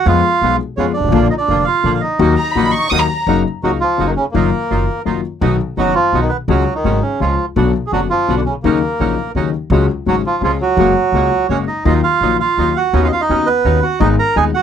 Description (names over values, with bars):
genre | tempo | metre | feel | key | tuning
tango | 168 BPM | 3/4 | rubato | Eb minor, F# major from 3.3 s | A4 = 439 Hz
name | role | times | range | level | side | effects
bandoneon | melody | 0.0-14.6 s | C#3 to Bb5 | -16 LUFS | right 4 dB | none
dark concert grand piano | accompaniment | 0.1-14.5 s | Eb1 to Ab4 | -18 LUFS | left 8 dB | none
bandoneon | stabs | 0.1-14.5 s | F#3 to Gb4 | -23 LUFS | right 6 dB | none
upright bass | bass | 0.1-14.5 s | F1 to F2 | -19 LUFS | right 2 dB | none
warm symphonic violin section | second line | 2.4-3.3 s | Bb5 to Eb6 | -17 LUFS | left 1 dB | none
room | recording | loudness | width
light reverb | dry, close 1970s-style studio recording | -13 LUFS | side -8 dB against mid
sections
0.0-3.3 A section; 3.3-11.9 B section; 11.9-14.6 A section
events
none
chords
0.1 Fdim; 1.1 Bb; 2.2 Ebm; 3.3 F#6; 4.4 D#madd9/F#; 5.4 B; 6.5 C#sus4; 7.2 C#; 7.6 Bm; 8.6 D#m7; 9.7 C#sus4; 10.4 C#; 10.8 F#add9; 11.9 Ebmadd9; 12.9 Badd9/D#; 14.0 Abm